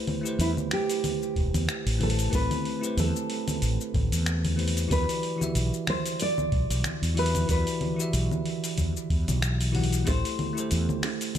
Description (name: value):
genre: sunset chillout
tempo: 93 BPM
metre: 4/4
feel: swing 56% on 16ths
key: unclear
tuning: A4 = 440 Hz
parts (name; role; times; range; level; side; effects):
- bell-like tine electric piano; accompaniment; 0.0-11.4 s; E3 to F#5; -32 LUFS; moving between left 7 dB and right 9 dB; auto-pan, tape echo
- dusty soul sampler-style drum kit; drums; 0.1-11.4 s; congas, finger snaps, hi-hat, shaker; -31 LUFS; equal; overdrive
- nylon-string guitar; melody; 0.4-11.4 s; E4 to D5; -31 LUFS; right 1 dB; tape echo
- mellow fretless electric bass; bass; 0.4-10.9 s; E1 to E2; -26 LUFS; equal; none
- electronic kick drum; drums; 1.4-10.2 s; none; -29 LUFS; equal; none
- bongos; percussion; 10.1-11.2 s; none; -39 LUFS; right 2 dB; none
room: light reverb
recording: none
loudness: -24 LUFS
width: side -10 dB against mid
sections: 0.0-11.4 A section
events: none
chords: 0.0 Am7; 4.9 Em9; 10.1 Am7